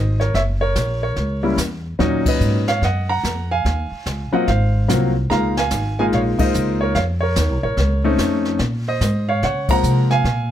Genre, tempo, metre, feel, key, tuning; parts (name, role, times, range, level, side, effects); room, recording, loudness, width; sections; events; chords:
jazz piano trio; 145 BPM; 4/4; swing 64% on 8ths; Bb minor; A4 = 440 Hz
warm baby grand piano; melody; 0.0-10.5 s; A#2 to A#5; -20 LUFS; equal
upright bass; bass; 0.0-10.5 s; Gb1 to Db3; -20 LUFS; equal
jazz brush drum kit; drums; 0.2-10.5 s; brushed snare drum, hi-hat, kick drum, ride cymbal, snare drum; -25 LUFS; left 1 dB
little or no reverb; close, detailed microphones; -17 LUFS; side -11 dB against mid
0.0-10.5 A section
band accent 2.2, 6.3, 9.6
0.3 Gb7; 2.0 Bmaj7; 3.6 Ebm9; 4.5 Ab13; 5.3 Db69; 6.9 F7b13; 8.6 Bbm9